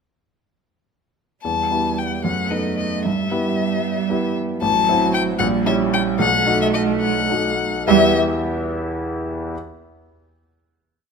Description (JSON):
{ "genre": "quick classical-period movement for piano trio", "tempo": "68-78 BPM (dotted quarters)", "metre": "6/8", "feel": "rubato", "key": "E minor", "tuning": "A4 = 435 Hz", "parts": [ { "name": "rich violin", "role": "melody", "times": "1.4-8.2 s", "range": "D#5 to A5", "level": "-21 LUFS", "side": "left 7 dB", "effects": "none" }, { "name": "warm cello", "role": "second line", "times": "1.4-8.2 s", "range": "F#3 to A3", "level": "-22 LUFS", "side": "right 13 dB", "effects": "none" }, { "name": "clear grand piano", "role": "accompaniment", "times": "1.4-9.5 s", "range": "A1 to E5", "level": "-21 LUFS", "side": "left 1 dB", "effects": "none" } ], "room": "moderate recital hall reverb, RT60 1.6 s", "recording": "close, detailed microphones", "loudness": "-17 LUFS", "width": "side -5 dB against mid", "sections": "1.4-7.9 A section; 7.9-9.5 final chord", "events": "none", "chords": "1.4 Em; 2.3 B7/F#; 3.1 Em/G; 4.6 F#m7b5/A; 5.4 A#dim7; 6.2 B7; 7.9 Em" }